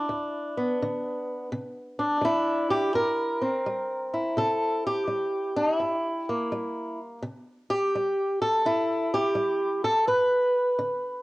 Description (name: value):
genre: acoustic country blues, solo or duo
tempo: 84 BPM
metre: 4/4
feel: swing 66% on 8ths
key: unclear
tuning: A4 = 441 Hz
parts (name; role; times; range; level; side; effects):
- fingerpicked swing-style acoustic guitar; solo; 0.0-11.2 s; D2 to B4; -24 LUFS; equal; none
room: moderate spring reverb, RT60 1.2 s, small room ambience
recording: home recording on cassette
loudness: -24 LUFS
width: side -19 dB against mid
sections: 0.0-11.2 A section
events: none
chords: 0.0 G (rootless); 1.5 C7; 10.1 G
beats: 0.09 0.80 | 1.51 2.23 2.94 3.66 | 4.37 5.09 5.80 6.51 | 7.23 7.94 8.65 9.37 | 10.08 10.79